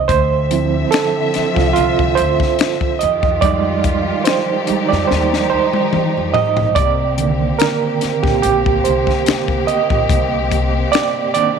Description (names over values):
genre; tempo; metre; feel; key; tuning
R&B, neo-soul; 72 BPM; 4/4; swing 54% on 16ths; C minor; A4 = 440 Hz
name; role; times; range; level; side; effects
overdriven reed electric piano; accompaniment; 0.0-11.6 s; D3 to Eb5; -16 LUFS; right 9 dB; fast tremolo
upright bass; bass; 0.0-11.4 s; Bb1 to F2; -22 LUFS; left 2 dB; none
warm studio string section; sustained chords; 0.1-11.6 s; C3 to E5; -22 LUFS; left 4 dB; none
compact cocktail drum kit; drums; 0.1-11.6 s; finger snaps, hi-hat, kick drum, snare drum, toms; -19 LUFS; left 5 dB; none
room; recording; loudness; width
light reverb, small room ambience; 1960s-style stereo; -14 LUFS; side -6 dB against mid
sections
0.0-6.8 A section; 6.8-11.6 A section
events
reed electric piano solo 0.0-6.8, 6.8-11.6; drum fill 5.1-6.8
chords
0.1 Dm9; 3.0 Fm9; 6.8 Cm9